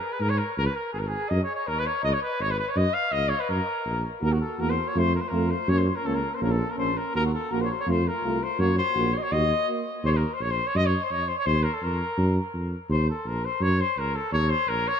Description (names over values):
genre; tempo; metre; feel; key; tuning
balkan folk, Balkan brass band; 165 BPM; 2/4; straight; F# major, Eb dorian sharp4 from 4.2 s; A4 = 440 Hz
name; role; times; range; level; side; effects
mellow trumpet; melody; 0.0-15.0 s; Gb4 to E#5; -26 LUFS; left 2 dB; analog delay
dark tuba; bass; 0.2-14.9 s; G#1 to G#2; -26 LUFS; right 1 dB; none
mellow euphonium; accompaniment; 4.2-9.8 s; A3 to Bb3; -32 LUFS; right 7 dB; none
warm trombone; accompaniment; 4.2-9.8 s; Db4 to Gb4; -33 LUFS; left 4 dB; none
room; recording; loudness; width
moderate plate reverb, RT60 2.9 s; dreamy mix soaked in reverb; -23 LUFS; side -8 dB against mid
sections
0.0-4.2 A section; 4.2-10.0 B section; 10.0-15.0 C section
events
speeding up 0.0-15.0; break 9.7-10.0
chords
0.0 F#add9 (rootless); 0.6 C#5; 1.3 D#m7; 2.0 C#5; 2.8 F#5; 3.5 F#; 4.2 Ebm; 5.0 F; 5.7 Gb; 6.4 Bbm; 7.1 Ebm; 7.9 F; 8.6 Gb; 9.3 Ebm; 10.0 Eb5; 10.8 Ebm13 (rootless); 11.5 Eb5; 12.2 Gb; 12.9 Eb5; 13.6 Gb5; 14.3 Eb5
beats
0.21 | 0.57 0.94 | 1.30 1.67 | 2.04 2.40 | 2.77 3.13 | 3.50 3.86 | 4.23 4.59 | 4.96 5.32 | 5.69 6.05 | 6.41 6.78 | 7.14 7.50 | 7.87 8.23 | 8.59 8.95 | 9.31 9.67 | 10.03 10.39 | 10.75 11.11 | 11.47 11.83 | 12.19 12.54 | 12.90 13.26 | 13.61 13.97 | 14.32 14.68